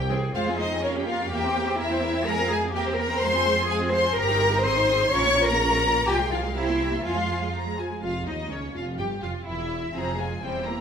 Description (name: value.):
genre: quick classical-period movement for string orchestra.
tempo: 125 BPM.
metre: 2/4.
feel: straight.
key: F minor.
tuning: A4 = 445 Hz.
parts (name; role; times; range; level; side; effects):
rich symphonic violin section; melody; 0.0-10.8 s; Db5 to Eb6; -35 LUFS; left 2 dB; none.
warm symphonic violin section; second line; 0.0-10.8 s; Db4 to Db6; -28 LUFS; left 3 dB; none.
rich symphonic double bass section; bass; 0.0-10.8 s; E1 to F2; -31 LUFS; right 2 dB; none.
rich symphonic viola section; accompaniment; 0.1-10.8 s; E3 to C5; -30 LUFS; right 2 dB; none.
rich studio cello section; bass; 0.1-10.8 s; Db2 to Db5; -26 LUFS; left 1 dB; none.
room: wet recital hall reverb, RT60 1.6 s.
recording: minimal, uncompressed stereo recording.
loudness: -22 LUFS.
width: side -7 dB against mid.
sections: 0.4-8.0 A section; 8.0-10.8 B section.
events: none.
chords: 0.4 Fm; 0.8 Gm7b5/F; 1.3 C7/E; 2.3 Fm; 2.8 C7/E; 3.2 Fm; 4.2 Eb/G; 4.7 Ab; 5.1 Bbm; 6.1 Fm/C; 6.6 C7; 7.0 Fm; 8.0 Ebsus2/F; 8.5 Db; 9.0 Em; 9.9 Fm.